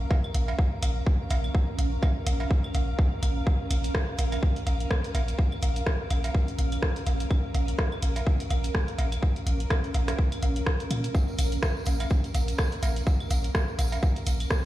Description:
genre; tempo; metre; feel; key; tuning
minimal techno; 125 BPM; 4/4; swing 57% on 16ths; Bb minor; A4 = 440 Hz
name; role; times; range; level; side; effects
punchy sub bass; bass; 0.0-14.5 s; Bb1 to Bb2; -26 LUFS; equal; sidechain pumping
granular cloud pad; texture; 0.0-14.7 s; Db4 to Bb5; -35 LUFS; right 1 dB; built-in reverb, sidechain pumping
electronic kick drum; drums; 0.1-14.6 s; none; -24 LUFS; equal; overdrive
cowbell, woodblock and claves; percussion; 0.1-14.6 s; none; -38 LUFS; right 2 dB; overdrive, tape echo
punchy analog drum machine; drums; 0.3-14.6 s; hi-hat, rim click; -34 LUFS; equal; none
tambourine; percussion; 11.1-14.6 s; none; -42 LUFS; right 3 dB; none
room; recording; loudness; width
little or no reverb; played on a big sound system in a bare room, stone room reverb; -24 LUFS; side -15 dB against mid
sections
0.0-14.7 A section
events
none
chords
0.0 Bbm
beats
0.11 0.59 1.07 | 1.55 2.03 2.51 2.99 | 3.47 3.95 4.43 4.91 | 5.39 5.87 6.35 6.83 | 7.31 7.79 8.27 8.75 | 9.23 9.71 10.19 10.67 | 11.15 11.63 12.11 12.59 | 13.07 13.55 14.03 14.51

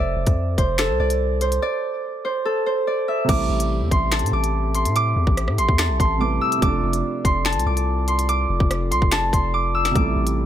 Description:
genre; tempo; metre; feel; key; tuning
hip hop, drill; 144 BPM; 4/4; half-time; A minor; A4 = 440 Hz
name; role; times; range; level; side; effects
Celtic harp; melody; 0.0-10.5 s; A4 to E6; -22 LUFS; right 1 dB; none
long sustained 808-style bass; bass; 0.0-10.5 s; F1 to A2; -23 LUFS; equal; none
drill drum kit; drums; 0.3-10.4 s; crash cymbal, finger snaps, hi-hat, kick drum, rim click, snare drum; -22 LUFS; left 1 dB; none
felt-muted upright piano; accompaniment; 3.2-10.5 s; C3 to B4; -28 LUFS; right 5 dB; none
glass harmonica; sustained chords; 3.3-10.5 s; C4 to E5; -30 LUFS; left 2 dB; none
room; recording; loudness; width
studio ambience; none; -18 LUFS; side -10 dB against mid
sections
0.0-3.3 A section; 3.3-10.5 B section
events
break 0.0-3.3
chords
0.0 F5; 3.3 Am7; 6.6 F6; 10.0 Am7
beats
0.37 0.79 1.21 | 1.62 2.04 2.46 2.87 | 3.29 3.71 4.12 4.54 | 4.96 5.37 5.79 6.21 | 6.62 7.04 7.46 7.87 | 8.29 8.71 9.12 9.54 | 9.96 10.37

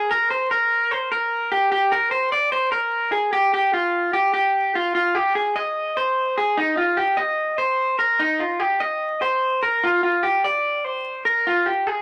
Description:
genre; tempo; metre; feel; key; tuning
indie pop; 148 BPM; 4/4; straight; Eb major; A4 = 439 Hz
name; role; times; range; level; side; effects
electric guitar through a small old amp; solo; 0.0-12.0 s; Eb4 to Eb5; -21 LUFS; equal; none
room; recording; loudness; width
little or no reverb; dry, gritty hardware recording, transformer saturation, vinyl crackle; -21 LUFS; mono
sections
0.0-5.0 A section; 5.0-12.0 B section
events
none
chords
none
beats
| 0.11 0.51 0.92 1.32 | 1.72 2.13 2.53 2.93 | 3.34 3.74 4.14 4.55 | 4.95 5.36 5.76 6.17 | 6.57 6.98 7.39 7.79 | 8.20 8.60 9.01 9.42 | 9.82 10.23 10.64 11.04 | 11.45 11.86

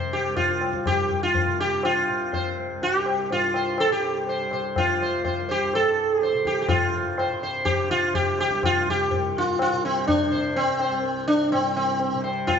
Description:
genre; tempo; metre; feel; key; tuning
indian classical, Hindustani; 124 BPM; 4/4; straight; C raga durga; A4 = 441 Hz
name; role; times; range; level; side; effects
sitar; melody; 0.0-12.6 s; C4 to C5; -22 LUFS; equal; none
tanpura; drone; 0.0-12.6 s; C2 to C3; -33 LUFS; right 1 dB; none
tabla; percussion; 0.4-12.6 s; none; -28 LUFS; left 4 dB; none
room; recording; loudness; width
wet recital hall reverb, RT60 1.3 s; nothing above 7.8 kHz; -21 LUFS; side -7 dB against mid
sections
0.0-6.7 A section; 6.7-12.6 B section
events
none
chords
none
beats
0.37 | 0.86 1.35 1.84 2.33 | 2.81 3.30 3.79 4.28 | 4.76 5.25 5.73 6.22 | 6.70 7.19 7.67 8.15 | 8.64 9.12 9.60 10.08 | 10.56 11.04 11.52 11.99 | 12.47

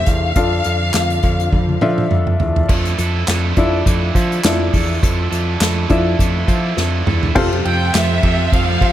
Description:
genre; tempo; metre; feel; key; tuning
piano-driven pop; 103 BPM; 4/4; swing 56% on 16ths; unclear; A4 = 440 Hz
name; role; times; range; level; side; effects
warm studio violin section; melody; 0.0-2.1, 7.6-8.9 s; E5 to G5; -21 LUFS; left 2 dB; none
bright upright piano; accompaniment; 0.0-8.9 s; C3 to F5; -21 LUFS; left 2 dB; none
warm studio string section; sustained chords; 0.0-2.7, 7.4-8.9 s; C3 to G4; -28 LUFS; right 3 dB; none
modern bright picked electric bass; bass; 0.0-8.9 s; E2 to F3; -19 LUFS; equal; none
unplugged drum kit; drums; 0.1-8.9 s; crash cymbal, handclaps, hi-hat, kick drum, ride cymbal, snare drum, toms; -18 LUFS; equal; none
cranked stack guitar; riff; 2.7-8.9 s; F3 to A4; -23 LUFS; right 5 dB; overdrive
room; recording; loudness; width
light reverb, studio reverb; none; -14 LUFS; side -12 dB against mid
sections
0.0-2.7 A section; 2.7-7.4 B section; 7.4-8.9 C section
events
drum fill 1.5-2.7, 6.8-7.4; upright piano solo 2.7-7.4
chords
0.4 Dmadd9; 7.4 Fadd9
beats
| 0.37 0.95 1.53 2.12 | 2.70 3.28 3.86 4.45 | 5.03 5.61 6.19 6.78 | 7.36 7.94 8.52

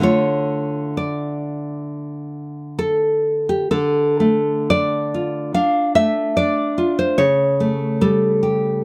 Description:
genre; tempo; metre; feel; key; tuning
romantic piece for solo classical guitar; 57-75 BPM; 4/4; rubato; D minor; A4 = 440 Hz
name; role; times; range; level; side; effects
nylon-string guitar; solo; 0.0-8.8 s; C#3 to F5; -19 LUFS; equal; none
room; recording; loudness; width
light reverb; none; -19 LUFS; mono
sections
0.0-3.7 A section; 3.7-8.8 B section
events
none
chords
0.0 Dm; 7.2 A7/C#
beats
| 0.04 0.97 1.88 2.79 | 3.72 4.71 5.56 6.36 | 7.19 8.01

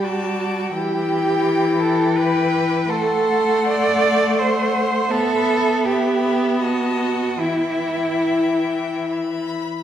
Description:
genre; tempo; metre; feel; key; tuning
classical, slow romantic movement for string quartet; 70-87 BPM; 3/4; rubato; E minor; A4 = 441 Hz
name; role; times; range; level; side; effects
clear violin; melody; 0.0-9.8 s; G5 to D6; -31 LUFS; left 8 dB; none
clear violin; second line; 0.0-9.7 s; D#5 to A5; -27 LUFS; left 4 dB; none
clear viola; accompaniment; 0.0-9.6 s; E3 to B3; -21 LUFS; left 1 dB; none
rich cello; bass; 0.0-9.1 s; E4 to D5; -21 LUFS; right 3 dB; none
room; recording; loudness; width
wet recital hall reverb, RT60 1.7 s; heard from further back in the room; -17 LUFS; side -10 dB against mid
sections
0.0-9.8 A section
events
none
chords
0.0 G5; 0.7 Em; 2.9 F#dim/A; 5.1 Em/B; 6.6 B7; 7.4 Em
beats
0.03 | 0.73 1.43 2.15 | 2.88 3.65 4.38 | 5.12 5.86 6.61 | 7.41 8.21 9.06

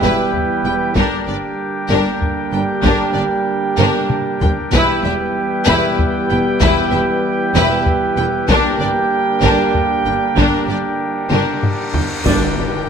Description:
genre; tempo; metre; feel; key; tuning
cinematic, epic orchestral film score; 96 BPM; 3/4; straight; unclear; A4 = 440 Hz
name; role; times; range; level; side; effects
rich symphonic violin section; melody; 0.0-12.9 s; Bb4 to G5; -23 LUFS; left 3 dB; none
warm symphonic violin section; second line; 0.0-12.9 s; D4 to B4; -24 LUFS; left 3 dB; none
clear symphonic viola section; accompaniment; 0.0-12.7 s; D4 to E4; -23 LUFS; left 1 dB; none
chamber organ, soft reed; sustained chords; 0.0-12.9 s; D4 to G5; -24 LUFS; left 1 dB; none
clear trombone section; sustained chords; 0.0-12.5 s; D3 to G3; -25 LUFS; right 5 dB; none
dark French horn section; sustained chords; 0.0-12.5 s; Bb3 to G4; -23 LUFS; left 2 dB; none
mellow trumpet section; stabs; 0.0-12.5 s; D5 to G5; -22 LUFS; right 4 dB; none
clear symphonic double bass section; bass; 0.0-12.6 s; E1 to G1; -23 LUFS; right 2 dB; none
rich symphonic cello section; bass; 0.0-12.7 s; E2 to G2; -24 LUFS; right 2 dB; none
taiko ensemble; drums; 0.0-12.8 s; none; -21 LUFS; left 1 dB; none
cymbal swell and tam-tam; percussion; 8.5-12.9 s; none; -27 LUFS; left 4 dB; none
cymbal swell and impact; sound effects; 11.5-12.9 s; none; -27 LUFS; left 1 dB; none
room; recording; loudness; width
moderate scoring stage reverb, RT60 1.6 s; none; -14 LUFS; side -7 dB against mid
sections
0.0-12.3 A section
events
drum fill 3.8-4.7, 11.3-12.3; cymbal swell 11.5-12.3; band accent 12.3-12.9; impact 12.3-12.9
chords
0.0 Em; 1.0 Gm; 4.7 Em; 8.5 Gm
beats
0.35 | 0.98 1.60 2.23 | 2.86 3.49 4.11 | 4.74 5.37 5.99 | 6.62 7.25 7.87 | 8.50 9.12 9.75 | 10.38 11.00 11.63 | 12.25 12.88

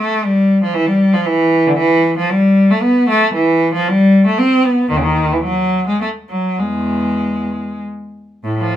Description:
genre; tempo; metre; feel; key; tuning
classical, baroque-style suite movement for unaccompanied cello; 92-118 BPM; 3/4; rubato; unclear; A4 = 439 Hz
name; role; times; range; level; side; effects
clear cello; solo; 0.0-8.8 s; D#2 to C4; -12 LUFS; equal; none
room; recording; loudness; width
moderate studio reverb, RT60 0.8 s; none; -12 LUFS; side -11 dB against mid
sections
0.0-8.4 A section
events
none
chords
none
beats
| 0.24 0.76 1.28 | 1.80 2.31 2.84 | 3.36 3.88 4.41 | 4.92 5.46 6.02 | 6.61 7.21 7.81 | 8.45

